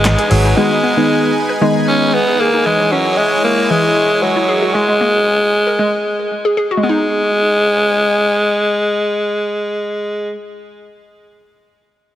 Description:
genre	pop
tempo	115 BPM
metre	4/4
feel	straight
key	G# minor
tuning	A4 = 440 Hz
part	raspy alto saxophone	melody	0.0-10.3 s	F#3 to C#4	-14 LUFS	equal	digital delay
part	supersaw pad	sustained chords	0.0-4.7 s	G#3 to G#5	-20 LUFS	equal	none
part	vintage muted fingered electric bass	bass	0.0-0.5 s	G#1	-13 LUFS	equal	none
part	hollow square pluck	arpeggios	0.2-10.4 s	E3 to C#5	-20 LUFS	equal	chorus, digital delay
part	soft electric-piano-like synth keys	accompaniment	0.6-2.2 s	D#3 to F#4	-16 LUFS	equal	chorus
room	moderate echo chamber reverb, RT60 2.5 s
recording	heavily compressed radio sound, multiband compression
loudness	-12 LUFS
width	side -12 dB against mid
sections	0.0-6.8 A section; 6.8-11.0 B section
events	none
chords	0.0 G#m; 2.7 C#madd9; 4.5 F#add9; 6.8 G#m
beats	0.05 | 0.57 1.09 1.61 2.14 | 2.66 3.18 3.70 4.22 | 4.75 5.27 5.79 6.31 | 6.83 7.35 7.88 8.40 | 8.92 9.44 9.96

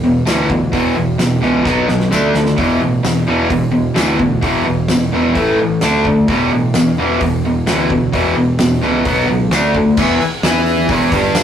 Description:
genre	garage rock duo or trio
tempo	130 BPM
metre	4/4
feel	straight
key	unclear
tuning	A4 = 440 Hz
part	cranked stack guitar	riff	0.0-11.4 s	E2 to E4	-13 LUFS	equal	overdrive
part	fuzz picked electric bass	bass	0.0-11.4 s	E1 to E2	-21 LUFS	equal	overdrive
part	oversized low-tuned drum kit	drums	0.3-11.4 s	crash cymbal, hi-hat, kick drum, snare drum	-21 LUFS	equal	none
part	tambourine	percussion	0.3-11.4 s	none	-30 LUFS	left 7 dB	none
room	wet studio reverb, RT60 0.5 s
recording	rough rehearsal-room recording, tube saturation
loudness	-12 LUFS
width	side -9 dB against mid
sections	0.0-10.0 A section; 10.0-11.4 B section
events	drum fill 1.7-2.6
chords	0.0 E5; 1.7 B5; 2.1 D5; 2.6 E5; 5.4 A5; 5.8 D5; 6.3 E5; 9.1 B5; 9.5 D5; 10.0 Em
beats	0.26 | 0.73 1.19 1.66 2.12 | 2.58 3.04 3.51 3.97 | 4.43 4.90 5.36 5.82 | 6.28 6.75 7.21 7.67 | 8.13 8.59 9.05 9.51 | 9.97 10.43 10.89 11.35

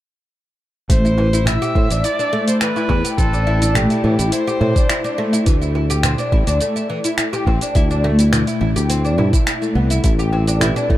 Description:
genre	organic downtempo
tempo	105 BPM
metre	4/4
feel	straight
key	A minor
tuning	A4 = 439 Hz
part	clear kamancheh	melody	0.9-5.2 s	G4 to E5	-24 LUFS	equal	ping-pong delay, shimmer reverb
part	oud	arpeggios	0.9-11.0 s	E3 to G4	-19 LUFS	left 1 dB	ping-pong delay, shimmer reverb
part	sustaining fretless electric bass	bass	0.9-11.0 s	A1 to A2	-18 LUFS	equal	tube saturation
part	deep house drum kit	drums	0.9-10.9 s	finger snaps, hi-hat, shaker	-24 LUFS	equal	none
part	electronic kick drum	drums	0.9-11.0 s	none	-16 LUFS	equal	overdrive
part	darbuka	percussion	1.2-10.7 s	none	-26 LUFS	right 2 dB	none
part	felt-muted upright piano	accompaniment	10.6-11.0 s	A3 to B4	-25 LUFS	right 3 dB	sidechain pumping, shimmer reverb
room	light reverb, small room reverb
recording	dark, warm production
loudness	-14 LUFS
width	side -14 dB against mid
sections	0.9-11.0 A section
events	none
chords	0.9 Am; 5.5 Am7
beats	| 0.90 1.47 2.04 2.61 | 3.18 3.75 4.33 4.90 | 5.47 6.04 6.61 7.18 | 7.75 8.33 8.90 9.47 | 10.04 10.61

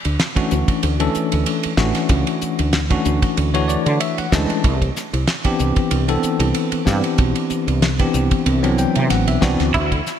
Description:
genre	electric jazz fusion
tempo	94 BPM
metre	4/4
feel	swing 54% on 16ths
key	unclear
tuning	A4 = 440 Hz
part	damped 70s drum kit	drums	0.0-10.2 s	hi-hat, kick drum, ride cymbal, snare drum	-21 LUFS	right 1 dB	none
part	woody fretless electric bass	bass	0.1-10.0 s	A1 to D3	-20 LUFS	equal	ensemble chorus
part	bell-like tine electric piano	accompaniment	0.4-9.7 s	E3 to A5	-20 LUFS	left 2 dB	medium stereo tremolo
part	clean electric guitar	stabs	9.7-10.0 s	E4	-22 LUFS	right 4 dB	wide subtle chorus
room	moderate lush hall reverb, RT60 2.2 s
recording	bright 1980s-style digital production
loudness	-16 LUFS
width	side -9 dB against mid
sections	0.0-10.2 A section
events	tine electric piano fill 3.4-4.6, 8.5-9.8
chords	0.0 Dmaj9; 4.6 Cmaj9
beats	0.19 0.83 1.46 | 2.10 2.74 3.37 4.01 | 4.65 5.28 5.92 6.56 | 7.20 7.83 8.47 9.11 | 9.75

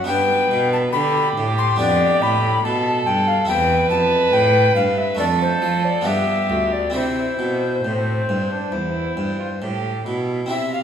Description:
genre	classical, baroque-style sonata movement with continuo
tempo	69 BPM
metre	4/4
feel	rubato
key	C major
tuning	A4 = 440 Hz
part	mellow tenor recorder	melody	0.0-10.8 s	C5 to C6	-21 LUFS	left 5 dB	none
part	dark violin	second line	0.0-10.8 s	C4 to F5	-22 LUFS	right 3 dB	none
part	harpsichord	accompaniment	0.0-10.8 s	D2 to A4	-26 LUFS	equal	none
part	rich cello	bass	0.0-10.8 s	D2 to F3	-24 LUFS	right 2 dB	none
room	wet recital hall reverb, RT60 1.3 s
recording	heard from further back in the room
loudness	-17 LUFS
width	side -8 dB against mid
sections	0.0-10.5 A section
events	none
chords	0.1 G; 1.8 G7/F; 3.5 C/E; 5.2 Dm7/F; 6.1 G7; 6.9 C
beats	| 0.08 0.94 1.80 2.65 | 3.49 4.33 5.19 6.06 | 6.95 7.84 8.73 9.63 | 10.52

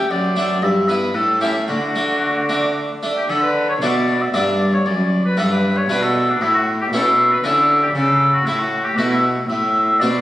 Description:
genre	classical, baroque-style sonata movement with continuo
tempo	116 BPM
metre	3/4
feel	straight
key	D major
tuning	A4 = 440 Hz
part	clear oboe	melody	0.0-10.2 s	D4 to G5	-18 LUFS	left 1 dB	none
part	harpsichord	accompaniment	0.0-10.2 s	F#2 to F#4	-21 LUFS	equal	none
part	rich cello	bass	0.0-10.2 s	F#2 to D3	-21 LUFS	equal	none
room	wet recital hall reverb, RT60 1.7 s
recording	recorded on a phone in the room, studio reverb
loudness	-15 LUFS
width	side -14 dB against mid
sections	0.0-3.3 A section; 3.3-10.2 B section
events	none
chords	0.1 D/F#; 0.6 Em/G; 1.1 A; 1.7 D; 4.9 D/F#; 6.4 A; 9.5 D7/A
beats	| 0.11 0.62 1.15 | 1.68 2.22 2.76 | 3.29 3.82 4.34 | 4.86 5.38 5.90 | 6.41 6.93 7.44 | 7.95 8.47 8.98 | 9.49 10.01

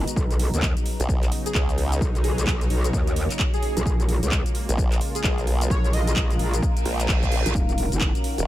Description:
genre	bass house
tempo	130 BPM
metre	4/4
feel	swing 62% on 16ths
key	unclear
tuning	A4 = 441 Hz
part	sweeping resonant pad	sustained chords	0.0-8.5 s	C#3 to Gb4	-34 LUFS	left 1 dB	chorus, sidechain pumping
part	metallic wobble bass	bass	0.0-8.1 s	Eb1 to D#2	-24 LUFS	equal	chorus, tube saturation, sidechain pumping
part	granular cloud pad	texture	0.0-8.5 s	Eb4 to Bb5	-35 LUFS	equal	built-in reverb, sidechain pumping
part	house drum kit	drums	0.1-8.5 s	handclaps, hi-hat, shaker	-30 LUFS	equal	studio reverb
part	electronic kick drum	drums	0.2-8.1 s	none	-24 LUFS	equal	studio reverb
part	formant-sweep wobble bass	bass	1.0-8.5 s	Eb1 to C#2	-24 LUFS	equal	chorus, overdrive, sidechain pumping
part	airy dreamy lead	melody	1.5-6.1 s	Ab4 to Eb5	-33 LUFS	equal	chorus, ping-pong delay
part	reverse cymbal	sound effects	6.8-7.5 s	none	-33 LUFS	right 6 dB	none
room	little or no reverb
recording	none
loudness	-20 LUFS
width	side -14 dB against mid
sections	0.0-8.5 A section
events	reverse cymbal 6.8-7.5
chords	0.2 Badd9; 3.9 Bbm7; 7.5 Ebm7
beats	| 0.16 0.62 1.09 1.55 | 2.01 2.47 2.93 3.39 | 3.86 4.32 4.78 5.24 | 5.70 6.16 6.62 7.09 | 7.55 8.01

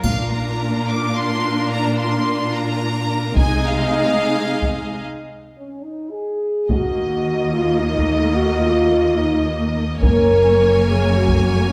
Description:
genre	cinematic, epic orchestral film score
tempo	72 BPM (dotted quarters)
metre	6/8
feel	straight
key	Eb dorian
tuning	A4 = 440 Hz
part	rich studio violin section	melody	0.0-11.7 s	Eb5 to D6	-29 LUFS	equal	none
part	rich symphonic violin section	second line	0.0-11.7 s	F4 to Eb5	-29 LUFS	equal	none
part	warm symphonic viola section	accompaniment	0.0-11.7 s	Ab3 to Eb4	-27 LUFS	equal	none
part	mellow French horn section	sustained chords	0.0-11.7 s	Ab3 to Bb4	-23 LUFS	equal	none
part	rich symphonic double bass section	bass	0.0-0.6, 3.4-3.9, 6.7-11.7 s	Gb1 to Eb2	-26 LUFS	equal	none
part	warm symphonic cello section	bass	0.0-11.7 s	Eb2 to C3	-26 LUFS	equal	none
part	taiko ensemble	drums	0.0-11.5 s	none	-23 LUFS	equal	none
part	triangle	percussion	0.0-1.1 s	none	-38 LUFS	equal	none
room	wet scoring stage reverb, RT60 1.6 s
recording	none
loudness	-18 LUFS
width	mono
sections	0.0-6.7 A section; 6.7-11.7 A section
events	break 5.0-6.7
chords	0.0 Bb; 3.4 Ab/C; 5.0 N.C.; 6.7 Ebm; 10.0 Gbadd9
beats	| 0.03 0.87 | 1.70 2.53 | 3.37 4.20 | 5.03 5.87 | 6.70 7.53 | 8.37 9.20 | 10.03 10.87 | 11.70

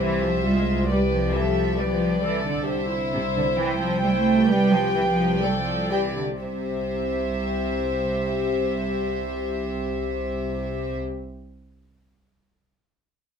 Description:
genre	quick classical-period movement for string orchestra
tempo	116-136 BPM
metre	4/4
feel	rubato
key	C major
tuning	A4 = 440 Hz
part	warm studio violin section	melody	0.0-10.9 s	D5 to G5	-30 LUFS	right 1 dB	none
part	warm chamber violin section	second line	0.0-11.0 s	A4 to D5	-29 LUFS	left 2 dB	none
part	warm studio viola section	accompaniment	0.0-11.0 s	E4 to A4	-29 LUFS	left 4 dB	none
part	rich studio double bass section	bass	0.0-11.0 s	C2	-29 LUFS	right 2 dB	none
part	warm symphonic cello section	bass	0.0-11.0 s	C3 to A3	-26 LUFS	right 2 dB	none
room	light reverb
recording	minimal, uncompressed stereo recording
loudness	-21 LUFS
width	side -7 dB against mid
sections	0.0-6.4 A section; 6.4-10.4 B section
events	slowing down 1.8-6.4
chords	0.0 Fm/C; 0.9 G7/C; 6.4 C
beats	0.44 | 0.90 1.35 1.79 2.24 | 2.68 3.12 3.57 4.03 | 4.48 4.95 5.43 5.92 | 6.42 6.92 7.41 7.91 | 8.40 8.89 9.39 9.88

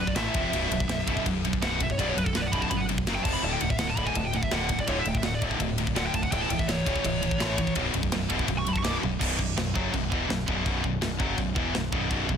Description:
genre	heavy metal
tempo	166 BPM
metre	4/4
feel	straight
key	B minor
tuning	A4 = 440 Hz
part	high-gain lead guitar	melody	0.0-8.9 s	A4 to D6	-31 LUFS	right 2 dB	distortion, digital delay
part	heavy high-gain guitar	riff	0.0-12.4 s	B1 to A3	-31 LUFS	right 10 dB	distortion
part	scooped high-gain guitar	riff	0.0-12.4 s	B1 to A3	-30 LUFS	left 11 dB	distortion
part	growling picked electric bass	bass	0.0-12.4 s	B0 to A1	-33 LUFS	equal	overdrive
part	tight metal drum kit	drums	0.1-12.4 s	china cymbal, crash cymbal, kick drum, ride cymbal, snare drum, toms	-30 LUFS	equal	none
room	little or no reverb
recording	dense, heavily limited modern master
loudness	-24 LUFS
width	side -8 dB against mid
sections	0.0-9.2 A section; 9.2-12.4 B section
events	lead electric guitar solo 0.0-9.2; drum fill 9.0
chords	0.2 A5; 0.4 F5; 0.5 B5; 3.1 F#5; 3.3 F5; 3.4 D5; 6.3 A/C#; 7.8 B5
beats	0.17 | 0.54 0.90 1.26 1.62 | 1.99 2.35 2.71 3.07 | 3.44 3.80 4.16 4.52 | 4.88 5.24 5.60 5.96 | 6.33 6.69 7.05 7.41 | 7.77 8.13 8.49 8.85 | 9.21 9.57 9.94 10.30 | 10.66 11.02 11.38 11.74 | 12.11

